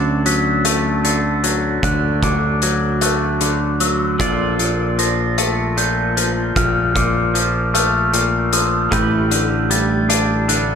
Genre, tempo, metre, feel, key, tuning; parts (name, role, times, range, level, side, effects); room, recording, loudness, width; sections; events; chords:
post-rock; 51 BPM (dotted quarters); 6/8; straight; A4 = 438 Hz
pedal steel guitar; sustained chords; 0.0-10.8 s; D3 to E5; -26 LUFS; right 5 dB; lush chorus
glockenspiel with rubber mallets; arpeggios; 0.0-10.8 s; D6 to B6; -22 LUFS; right 2 dB; slapback echo
twangy electric guitar; arpeggios; 0.0-10.8 s; A2 to D4; -20 LUFS; left 3 dB; spring reverb, slapback echo
growling fingered electric bass; bass; 0.0-10.8 s; A1 to D2; -21 LUFS; right 1 dB; overdrive
loose indie drum kit; drums; 0.3-10.7 s; hi-hat, kick drum; -21 LUFS; left 1 dB
moderate lush hall reverb, RT60 2.9 s; big arena sound; -15 LUFS; side -7 dB against mid
0.0-10.8 A section
0.0 Dmaj7; 4.2 Bbmaj7; 8.9 A7sus4